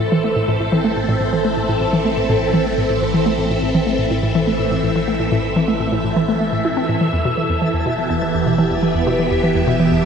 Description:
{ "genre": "ambient, sequencer-driven space music", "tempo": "124 BPM", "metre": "4/4", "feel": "straight", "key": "unclear", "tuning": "A4 = 440 Hz", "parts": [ { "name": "phased string machine", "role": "sustained chords", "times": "0.0-10.1 s", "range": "E3 to E5", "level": "-18 LUFS", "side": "equal", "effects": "ensemble chorus, phaser" }, { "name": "hollow square pluck", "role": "riff", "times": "0.0-10.0 s", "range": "E2 to E4", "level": "-19 LUFS", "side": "equal", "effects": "chorus, tape echo" }, { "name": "round analog bass", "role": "bass", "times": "0.0-10.1 s", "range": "E1 to A1", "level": "-31 LUFS", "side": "equal", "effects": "none" }, { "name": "twinkling granular texture", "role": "texture", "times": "0.0-10.1 s", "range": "E5 to A5", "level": "-33 LUFS", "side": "right 1 dB", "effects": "built-in reverb" } ], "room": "wet lush hall reverb, RT60 2.6 s", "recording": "none", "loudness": "-15 LUFS", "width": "side -7 dB against mid", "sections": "0.0-10.1 A section", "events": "fade-in on analog synth bass 0.0-10.1; fade-in on synth texture 0.0-10.1; filter sweep on synth arpeggio sound 0.0-10.1", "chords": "0.0 Am; 7.1 Em", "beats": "0.36 0.84 | 1.33 1.81 2.29 2.78 | 3.26 3.75 4.23 4.71 | 5.20 5.68 6.17 6.65 | 7.13 7.62 8.10 8.59 | 9.07 9.55 10.04" }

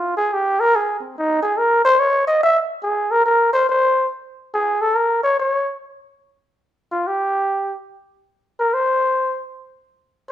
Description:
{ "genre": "jazz", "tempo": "142 BPM", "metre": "4/4", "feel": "swing 67% on 8ths", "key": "unclear", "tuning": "A4 = 441 Hz", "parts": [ { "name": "trumpet with bucket mute", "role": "solo", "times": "0.0-10.3 s", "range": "C4 to E5", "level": "-16 LUFS", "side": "equal", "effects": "none" } ], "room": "light reverb", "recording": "minimal, uncompressed stereo recording", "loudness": "-16 LUFS", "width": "side -12 dB against mid", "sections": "0.0-6.6 A section; 6.6-10.3 B section", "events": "muted trumpet solo 0.0-6.6", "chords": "none", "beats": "0.28 0.70 1.13 | 1.55 1.97 2.39 2.81 | 3.24 3.66 4.08 4.50 | 4.92 5.35 5.77 6.19 | 6.61 7.04 7.46 7.88 | 8.31 8.73 9.15 9.58 | 10.00" }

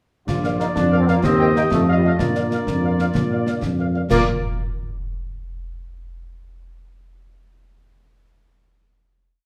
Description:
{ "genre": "military-style march for wind band", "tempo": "125 BPM (dotted quarters)", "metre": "6/8", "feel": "straight", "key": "Bb major", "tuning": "A4 = 441 Hz", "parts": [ { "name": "clear woodwind section", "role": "second line", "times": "0.3-4.2 s", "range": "F4 to Eb5", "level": "-30 LUFS", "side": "equal", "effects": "none" }, { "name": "dark euphonium", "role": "second line", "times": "0.3-3.8 s", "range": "D4 to G4", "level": "-30 LUFS", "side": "equal", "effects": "none" }, { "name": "bright trombone section", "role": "sustained chords", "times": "0.3-4.2 s", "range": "G3 to F4", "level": "-28 LUFS", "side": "equal", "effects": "none" }, { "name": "mellow tuba", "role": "bass", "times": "0.3-4.2 s", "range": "Bb1 to Bb2", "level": "-22 LUFS", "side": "equal", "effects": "none" }, { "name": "concert snare drum, clash cymbals and concert bass drum", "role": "drums", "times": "0.3-4.3 s", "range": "none", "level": "-29 LUFS", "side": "equal", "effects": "none" }, { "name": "clear trumpet section", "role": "melody", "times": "0.4-4.2 s", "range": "D5 to G5", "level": "-32 LUFS", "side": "equal", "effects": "none" }, { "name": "mellow French horn section", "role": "accompaniment", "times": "0.4-4.2 s", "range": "F4 to Eb5", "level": "-30 LUFS", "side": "equal", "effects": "none" } ], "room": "wet large studio reverb, RT60 1.2 s", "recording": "none", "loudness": "-19 LUFS", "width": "mono", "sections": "0.3-4.1 A section; 4.1-5.1 final chord", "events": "none", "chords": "0.3 Bb; 1.2 Eb; 1.7 F13; 2.2 Bb", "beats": "| 0.28 0.76 | 1.24 1.72 | 2.19 2.67 | 3.15 3.63 | 4.11" }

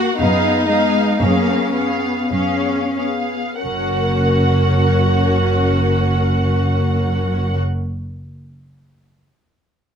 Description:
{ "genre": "classical, slow romantic movement for string orchestra", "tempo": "44-62 BPM", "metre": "3/4", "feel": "rubato", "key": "F# major", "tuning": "A4 = 440 Hz", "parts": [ { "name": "dark studio violin section", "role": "melody", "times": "0.0-7.6 s", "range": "E#5 to F#5", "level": "-25 LUFS", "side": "equal", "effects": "none" }, { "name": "dark chamber violin section", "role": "second line", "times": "0.0-7.6 s", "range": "C#4 to F#4", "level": "-22 LUFS", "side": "equal", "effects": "none" }, { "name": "warm studio viola section", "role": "accompaniment", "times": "0.0-7.6 s", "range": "A#3 to A#4", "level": "-22 LUFS", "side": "left 2 dB", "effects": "none" }, { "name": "rich chamber double bass section", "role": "bass", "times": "0.0-7.6 s", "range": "F#1 to F#2", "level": "-20 LUFS", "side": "equal", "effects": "none" }, { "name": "warm chamber cello section", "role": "bass", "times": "0.0-7.6 s", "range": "F#2 to C#4", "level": "-21 LUFS", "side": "equal", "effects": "none" } ], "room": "light reverb", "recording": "close, detailed microphones", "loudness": "-15 LUFS", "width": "side -8 dB against mid", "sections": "0.0-3.6 A section; 3.6-7.4 B section", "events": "slowing down 0.0-3.6", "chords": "0.2 C#7/F#; 3.6 F#", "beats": "| 0.17 1.19 2.33 | 3.62 4.87 6.12" }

